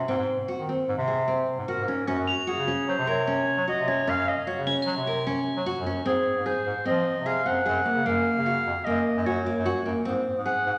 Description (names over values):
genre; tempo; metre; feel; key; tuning
contemporary instrumental, chamber music in an uneven meter; 150 BPM; 5/4; straight; Gb lydian; A4 = 439 Hz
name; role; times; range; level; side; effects
nylon-string guitar; arpeggios; 0.0-10.7 s; Bb3 to Bb4; -30 LUFS; equal; none
clear bass clarinet; bass; 0.1-10.7 s; F2 to Gb3; -32 LUFS; equal; none
mellow clarinet; melody; 1.7-10.8 s; Gb4 to Gb5; -30 LUFS; equal; none
crotales; texture; 2.3-5.9 s; F7 to C8; -36 LUFS; equal; none
room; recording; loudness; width
wet recital hall reverb, RT60 1.4 s; none; -26 LUFS; mono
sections
0.0-6.1 A section; 6.1-10.8 B section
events
none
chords
0.0 Ab7; 2.1 Gbmaj7sus2; 8.1 Gbmaj7; 10.1 Ab7